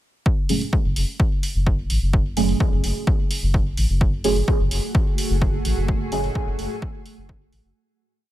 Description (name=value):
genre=dub techno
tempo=128 BPM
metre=4/4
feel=straight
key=F# minor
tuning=A4 = 440 Hz
part: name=electronic kick drum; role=drums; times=0.3-7.4 s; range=none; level=-21 LUFS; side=equal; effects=overdrive
part: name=deep mellow chord stab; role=stabs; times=0.5-7.3 s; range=F#3 to G#4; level=-25 LUFS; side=right 3 dB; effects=chorus, phaser, sidechain pumping, dub echo
part: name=electronic hi-hat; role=drums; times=0.5-7.6 s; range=none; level=-31 LUFS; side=right 2 dB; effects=overdrive
part: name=round analog bass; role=bass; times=0.8-7.7 s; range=F#1 to A1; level=-22 LUFS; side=equal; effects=tube saturation, sidechain pumping
part: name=granular cloud pad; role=sustained chords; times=4.7-7.7 s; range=A3 to G#4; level=-30 LUFS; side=right 2 dB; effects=built-in reverb, sidechain pumping
room=digital ambience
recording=echo-heavy mix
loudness=-19 LUFS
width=side -14 dB against mid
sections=0.3-7.8 groove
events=filter sweep on synth stab 0.3-7.8; fade-out 5.3-7.8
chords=0.3 F#madd9